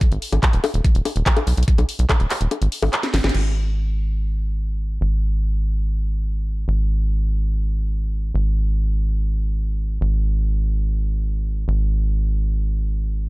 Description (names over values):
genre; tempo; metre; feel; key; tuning
psychedelic trance; 144 BPM; 4/4; straight; G# minor; A4 = 440 Hz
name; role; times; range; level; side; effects
drum and bass drum kit; drums; 0.0-3.4 s; bongos, crash cymbal, handclaps, hi-hat, snare drum; -23 LUFS; left 2 dB; none
electronic kick drum; drums; 0.0-2.2 s; none; -17 LUFS; equal; none
tight sequencer bass; bass; 0.1-13.3 s; D#1 to B1; -19 LUFS; equal; none
room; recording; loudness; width
little or no reverb; dark, warm production; -18 LUFS; side -22 dB against mid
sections
0.0-3.3 A section; 3.3-13.3 B section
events
drop 0.0-3.3; break 2.5-3.3; drum fill 3.0-3.3; band accent 3.2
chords
none